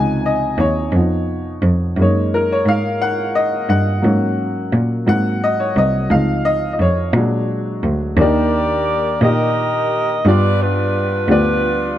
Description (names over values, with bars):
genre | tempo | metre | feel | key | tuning
slow gospel | 58 BPM (dotted quarters) | 6/8 | straight | Db major, Eb major from 8.2 s | A4 = 442 Hz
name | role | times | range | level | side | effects
warm upright piano | accompaniment | 0.0-12.0 s | G2 to Ab5 | -18 LUFS | left 1 dB | none
clear cello | bass | 0.0-12.0 s | C2 to Bb2 | -18 LUFS | equal | none
mellow saxophone section | melody | 8.2-12.0 s | D4 to Eb5 | -18 LUFS | equal | none
room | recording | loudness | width
light reverb | dark, warm production | -14 LUFS | side -12 dB against mid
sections
0.0-8.2 A section; 8.2-12.0 B section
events
upright piano solo 0.0-8.2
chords
0.0 Dbmaj7; 0.9 Db9/F; 2.0 Gb6; 4.0 Ab7sus4; 5.1 Ab7; 6.1 Dbmaj7; 7.2 Bbaug7; 8.2 Ebmaj7; 10.3 G7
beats
0.94 | 1.97 3.01 | 4.04 5.08 | 6.12 7.15 | 8.19 9.22 | 10.26 11.29